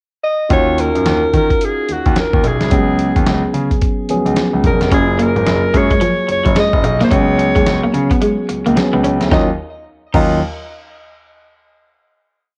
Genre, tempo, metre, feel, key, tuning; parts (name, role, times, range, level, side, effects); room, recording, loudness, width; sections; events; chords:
R&B, new jack swing; 109 BPM; 4/4; swing 61% on 16ths; Eb minor; A4 = 440 Hz
clear alto saxophone; melody; 0.2-10.4 s; Gb4 to Eb5; -21 LUFS; equal; tape echo
tine electric piano; accompaniment; 0.5-10.4 s; Eb3 to Ab4; -21 LUFS; equal
warm concert grand piano; bass; 0.5-10.4 s; Fb1 to Eb3; -20 LUFS; equal
dusty soul sampler-style drum kit; drums; 0.5-10.3 s; crash cymbal, hi-hat, kick drum, snare drum; -20 LUFS; equal; cassette tape
electric guitar at the edge of break-up; riff; 4.9-10.3 s; F3 to Eb4; -21 LUFS; equal; subtle chorus
light reverb, digital ambience; home recording on cassette; -15 LUFS; mono
0.0-0.5 pickup bar; 0.5-9.3 verse; 9.3-11.5 final chord
kick muted 8.2-9.3
0.0 N.C.; 0.5 Ebm9; 2.7 Db7sus4; 4.9 Gbmaj9; 7.1 Db7sus4; 9.3 Ebm9